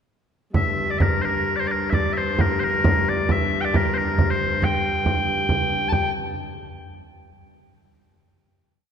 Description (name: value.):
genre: medieval dance.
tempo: 86-98 BPM (dotted quarters).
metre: 6/8.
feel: straight.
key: G dorian.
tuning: A4 = 439 Hz.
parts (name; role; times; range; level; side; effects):
frame drum; percussion; 0.5-6.1 s; none; -23 LUFS; right 2 dB; none.
loud bright bagpipes; melody; 0.6-6.1 s; Bb4 to A5; -23 LUFS; left 2 dB; none.
warm hurdy-gurdy; drone; 0.6-6.0 s; G2; -28 LUFS; left 2 dB; none.
room: wet church reverb, RT60 2.9 s.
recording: minimal, uncompressed stereo recording.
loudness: -19 LUFS.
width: side -7 dB against mid.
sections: 0.5-5.9 A section; 5.9-7.2 final note.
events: speeding up 0.5-7.2.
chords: none.